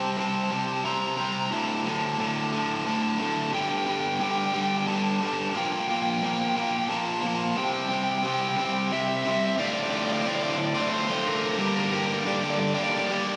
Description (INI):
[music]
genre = rock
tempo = 89 BPM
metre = 3/4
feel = straight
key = D minor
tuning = A4 = 440 Hz
[part]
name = crunchy overdriven guitar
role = melody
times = 0.0-13.2 s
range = Bb4 to Bb5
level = -31 LUFS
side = equal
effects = digital delay
[part]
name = distorted electric guitar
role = riff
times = 0.0-13.4 s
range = D2 to G4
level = -28 LUFS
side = equal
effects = overdrive
[sound]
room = wet lush hall reverb, RT60 2.6 s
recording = dreamy mix soaked in reverb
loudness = -26 LUFS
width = mono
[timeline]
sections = 0.0-9.6 A section; 9.6-13.4 B section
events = build-up 0.0-9.6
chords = 0.0 C5; 1.5 D5; 3.5 G5; 5.6 Bb5; 7.6 C; 9.6 Dm7; 11.6 Gm